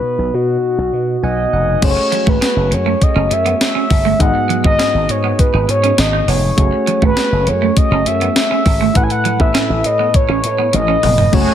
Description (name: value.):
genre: 1980s-style pop.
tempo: 101 BPM.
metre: 4/4.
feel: straight.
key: F# dorian.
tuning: A4 = 437 Hz.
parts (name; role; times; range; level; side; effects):
mellow horn-like synth lead; melody; 0.0-11.5 s; F#4 to G#5; -17 LUFS; left 1 dB; chorus.
soft electric-piano-like synth keys; accompaniment; 0.0-11.5 s; G#2 to G#5; -21 LUFS; left 1 dB; chorus.
slap bass with an envelope filter; bass; 0.2-11.4 s; E#1 to B2; -18 LUFS; equal; none.
clean 12-bit digital drum machine; drums; 1.8-11.5 s; crash cymbal, hi-hat, kick drum, snare drum, tambourine, toms; -16 LUFS; equal; gated reverb.
clean electric guitar; riff; 2.0-11.5 s; F#3 to D#4; -21 LUFS; right 9 dB; lush chorus.
lush unison pad; sustained chords; 11.3-11.5 s; A3 to G#4; -18 LUFS; right 4 dB; chorus.
room: light reverb.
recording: none.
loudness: -12 LUFS.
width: side -10 dB against mid.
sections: 0.0-1.8 A section; 1.8-11.5 B section.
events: synth keys fill 0.9-1.8; drum fill 10.7-11.3.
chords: 0.0 B; 1.8 F#madd9; 4.2 G#m7; 6.6 F#madd9; 9.0 Asus2.